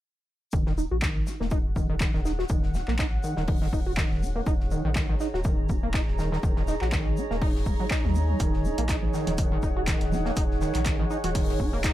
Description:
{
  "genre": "acid house",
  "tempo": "122 BPM",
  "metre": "4/4",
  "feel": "swing 55% on 16ths",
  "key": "Eb minor pentatonic",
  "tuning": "A4 = 441 Hz",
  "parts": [
    { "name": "overdriven acid bass", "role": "riff", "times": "0.5-11.9 s", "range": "Eb3 to Gb4", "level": "-31 LUFS", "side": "equal", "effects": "distortion, tube saturation, wide subtle chorus, dub echo" },
    { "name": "round analog bass", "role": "bass", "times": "0.5-11.9 s", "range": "Eb1 to Eb2", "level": "-30 LUFS", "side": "equal", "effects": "sidechain pumping" },
    { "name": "electronic kick drum", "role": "drums", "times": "0.5-11.9 s", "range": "none", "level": "-27 LUFS", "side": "equal", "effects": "none" },
    { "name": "modern studio drum kit", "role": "drums", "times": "0.5-11.9 s", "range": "hi-hat, shaker, snare drum", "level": "-44 LUFS", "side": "left 2 dB", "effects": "sidechain pumping on hats, high-pass filter on hats, high-pass filter on snare, sidechain pumping on perc, high-pass filter on perc, high-pass filter on room" },
    { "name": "warbly tape-like pad", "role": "texture", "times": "1.0-11.9 s", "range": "Eb4 to Bb5", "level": "-34 LUFS", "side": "right 2 dB", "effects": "chorus, built-in reverb, sidechain pumping" },
    { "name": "punchy analog drum machine", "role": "drums", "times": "1.0-11.9 s", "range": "congas, handclaps, hi-hat", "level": "-32 LUFS", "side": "right 1 dB", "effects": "none" }
  ],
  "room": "light reverb",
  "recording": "none",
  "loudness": "-24 LUFS",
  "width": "side -14 dB against mid",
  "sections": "0.5-11.9 A section",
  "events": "filter sweep on acid bass 0.5-11.9",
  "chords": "0.5 Ebm7",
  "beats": "| 0.53 1.02 1.51 2.01 | 2.50 2.99 3.48 3.97 | 4.46 4.96 5.45 5.94 | 6.43 6.92 7.42 7.91 | 8.40 8.89 9.38 9.88 | 10.37 10.86 11.35 11.84"
}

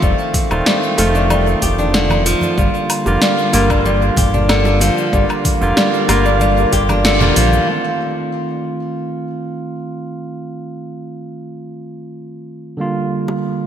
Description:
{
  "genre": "organic downtempo",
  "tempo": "94 BPM",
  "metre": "4/4",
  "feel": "straight",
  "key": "unclear",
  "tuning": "A4 = 440 Hz",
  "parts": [
    { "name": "barky tine electric piano", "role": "accompaniment", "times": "0.0-13.7 s", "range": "D3 to F4", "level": "-19 LUFS", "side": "right 2 dB", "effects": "overdrive, sidechain pumping, low-pass filter, digital delay" },
    { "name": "flamenco guitar", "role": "arpeggios", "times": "0.0-7.7 s", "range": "D3 to G4", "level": "-18 LUFS", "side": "left 1 dB", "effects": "digital delay" },
    { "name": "round analog bass", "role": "bass", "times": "0.0-7.6 s", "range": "Eb1 to Bb1", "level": "-17 LUFS", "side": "equal", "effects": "sidechain pumping" },
    { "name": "deep house drum kit", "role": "drums", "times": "0.0-7.7 s", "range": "cabasa, hi-hat, snare drum, woodblock", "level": "-20 LUFS", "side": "equal", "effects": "overdrive, low-pass filter on perc, studio reverb, low-pass filter on snare, low-pass filter on hats, gated reverb" },
    { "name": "electronic kick drum", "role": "drums", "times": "0.0-6.9 s", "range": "none", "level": "-19 LUFS", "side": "equal", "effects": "studio reverb" },
    { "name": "congas and bongos", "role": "percussion", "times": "0.3-7.7, 13.3-13.4 s", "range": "none", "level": "-26 LUFS", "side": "equal", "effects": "none" }
  ],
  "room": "wet lush hall reverb, RT60 2.6 s",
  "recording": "bright 1980s-style digital production",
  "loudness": "-13 LUFS",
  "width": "side -9 dB against mid",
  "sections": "0.0-7.7 A section; 7.7-13.7 B section",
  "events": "band accent 7.0-7.4; filter sweep on tine electric piano 7.7-13.7",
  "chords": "0.0 F7; 2.6 Gm7; 7.7 F7; 12.8 Gm7",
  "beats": "| 0.03 0.66 1.30 1.94 | 2.58 3.22 3.85 4.49 | 5.13 5.77 6.41 7.05 | 7.68 8.32 8.96 9.60 | 10.24 10.88 11.51 12.15 | 12.79 13.43"
}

